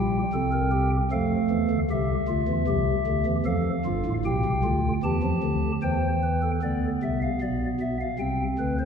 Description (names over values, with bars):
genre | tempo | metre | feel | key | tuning
classical, baroque-style 4-part fugue for pipe organ | 76 BPM | 3/4 | straight | unclear | A4 = 440 Hz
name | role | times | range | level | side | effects
pipe organ, stopped flute | solo | 0.0-8.9 s | G1 to A5 | -23 LUFS | equal | none
room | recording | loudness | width
wet concert hall reverb, RT60 2.0 s | heard from further back in the room | -23 LUFS | side -7 dB against mid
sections
0.0-6.6 A section; 6.6-8.9 B section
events
none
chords
0.0 C7(no3); 1.1 F; 1.9 C; 3.5 F; 4.2 G7/B; 5.8 C/E; 6.6 Bdim; 8.2 C5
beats
0.33 1.11 | 1.89 2.67 3.46 | 4.25 5.04 5.83 | 6.62 7.41 8.20